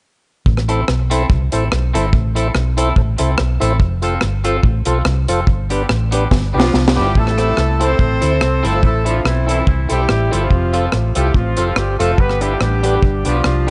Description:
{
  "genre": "ska",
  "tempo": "143 BPM",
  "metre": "4/4",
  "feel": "swing 54% on 8ths",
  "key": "A minor",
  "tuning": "A4 = 440 Hz",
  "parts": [
    { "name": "hollow-body short-scale fingered electric bass", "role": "bass", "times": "0.5-13.7 s", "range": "F1 to D2", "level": "-20 LUFS", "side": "equal", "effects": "none" },
    { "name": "deep reggae drum kit", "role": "drums", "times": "0.5-13.5 s", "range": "hi-hat, kick drum, rim click, snare drum", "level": "-20 LUFS", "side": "equal", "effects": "none" },
    { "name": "twangy electric guitar", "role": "accompaniment", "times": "0.7-13.7 s", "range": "B3 to A4", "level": "-26 LUFS", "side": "equal", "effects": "subtle chorus, analog delay" },
    { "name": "mellow tonewheel organ", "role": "stabs", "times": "0.7-13.7 s", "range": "D4 to C5", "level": "-26 LUFS", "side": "equal", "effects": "chorus vibrato, slow rotary speaker" },
    { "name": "mellow horn section", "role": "melody", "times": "6.6-13.7 s", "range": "E3 to C5", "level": "-22 LUFS", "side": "equal", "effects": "analog delay" }
  ],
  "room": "light reverb",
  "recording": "nothing above 10.5 kHz",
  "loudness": "-16 LUFS",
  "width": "mono",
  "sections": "0.5-7.2 A section; 7.2-13.7 B section",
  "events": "drum fill 6.3-7.2",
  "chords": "0.5 Am; 3.8 F; 5.5 G; 7.2 Am; 10.5 F; 12.2 G"
}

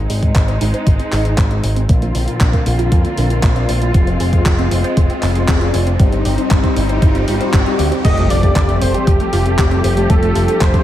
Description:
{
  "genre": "italo disco",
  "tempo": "117 BPM",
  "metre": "4/4",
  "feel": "straight",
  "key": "unclear",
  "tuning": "A4 = 442 Hz",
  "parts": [
    { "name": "dark studio string section", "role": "sustained chords", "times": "0.0-10.8 s", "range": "D3 to G4", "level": "-22 LUFS", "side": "equal", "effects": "none" },
    { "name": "analog pluck", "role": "arpeggios", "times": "0.0-10.8 s", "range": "A3 to Ab5", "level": "-26 LUFS", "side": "right 4 dB", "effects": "chorus, phaser, tape echo" },
    { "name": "mellow synth brass", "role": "stabs", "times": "0.0-10.8 s", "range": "Bb2 to Ab5", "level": "-22 LUFS", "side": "left 4 dB", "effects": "chorus" },
    { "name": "picked electric bass with an envelope filter", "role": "bass", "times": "0.0-10.7 s", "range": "F1 to F2", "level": "-17 LUFS", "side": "equal", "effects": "none" },
    { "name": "riser and impact", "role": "sound effects", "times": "3.4-10.1 s", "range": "none", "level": "-25 LUFS", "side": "equal", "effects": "none" },
    { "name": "clean 12-bit digital drum machine", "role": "drums", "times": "0.1-10.8 s", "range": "crash cymbal, handclaps, hi-hat", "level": "-25 LUFS", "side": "equal", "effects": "high-pass filter on hats, high-pass filter on snare, high-pass filter on toms, high-pass filter on cymbals, high-pass filter on room, gated reverb" },
    { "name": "electronic kick drum", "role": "drums", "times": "0.2-10.8 s", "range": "none", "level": "-14 LUFS", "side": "equal", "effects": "none" },
    { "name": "wide unison lead", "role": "melody", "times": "8.0-10.8 s", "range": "G4 to Eb5", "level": "-20 LUFS", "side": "right 1 dB", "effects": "tape echo" }
  ],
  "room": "light reverb",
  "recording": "none",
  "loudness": "-12 LUFS",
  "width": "side -12 dB against mid",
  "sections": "0.0-8.0 A section; 8.0-10.8 B section",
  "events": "filter sweep on synth arpeggio sound 0.0-8.0; filter sweep on analog polysynth 0.0-8.0; riser 3.4-8.0; impact 8.0-10.1",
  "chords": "0.0 Ab; 1.9 Bbadd9; 3.9 Fm; 6.0 Cm/G; 8.0 Fadd9"
}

